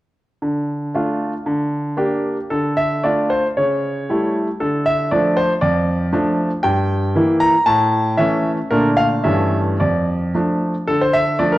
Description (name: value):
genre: classical-period piano sonatina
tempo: 115 BPM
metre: 2/4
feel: rubato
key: D minor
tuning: A4 = 440 Hz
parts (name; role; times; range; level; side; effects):
- bright concert grand piano; solo; 0.4-11.6 s; F2 to Bb5; -16 LUFS; equal; none
room: moderate recital hall reverb, RT60 1.6 s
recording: worn, warbling old tape, cassette tape, warbly pitch drift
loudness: -16 LUFS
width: side -16 dB against mid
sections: 0.4-2.5 A section; 2.5-10.9 B section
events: none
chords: 0.4 Dm; 1.5 Gm/D; 2.5 Dm; 3.6 A7/C#; 4.6 Dm; 5.6 Dm/F; 6.6 Edim/G; 7.7 A; 8.7 Bbmaj7; 9.2 A7/G; 9.8 Dm/F; 10.9 Dm